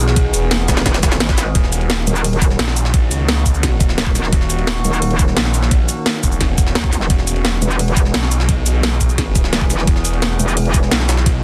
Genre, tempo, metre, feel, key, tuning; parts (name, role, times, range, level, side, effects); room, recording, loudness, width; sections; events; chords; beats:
dark technical drum and bass; 173 BPM; 4/4; straight; Eb phrygian; A4 = 440 Hz
metallic inharmonic drone; sustained chords; 0.0-11.4 s; Eb3 to G#4; -27 LUFS; equal; chorus, built-in reverb, phaser, sidechain pumping
snarling distorted saw bass; bass; 0.0-11.4 s; Eb1 to Db2; -20 LUFS; equal; distortion, overdrive, sidechain pumping
jungle sampler-style drum kit; drums; 0.1-11.3 s; hi-hat, ride cymbal, snare drum; -29 LUFS; equal; high-pass filter on cymbals, high-pass filter on snare, high-pass filter on hats
drum and bass drum kit; drums; 0.2-11.3 s; cabasa, hi-hat, snare drum; -22 LUFS; equal
electronic kick drum; drums; 0.2-11.3 s; -18 LUFS; equal
metallic wobble bass; bass; 0.7-10.9 s; Eb1 to Eb2; -20 LUFS; equal; chorus
light reverb; dense, heavily limited modern master; -16 LUFS; mono
0.0-11.4 A section
0.0 Eadd9; 1.6 Ebm; 7.1 Eadd9
| 0.16 0.51 0.86 1.20 | 1.55 1.90 2.24 2.59 | 2.94 3.29 3.63 3.98 | 4.33 4.67 5.02 5.37 | 5.71 6.06 6.41 6.75 | 7.10 7.45 7.79 8.14 | 8.49 8.83 9.18 9.53 | 9.87 10.22 10.57 10.91 | 11.26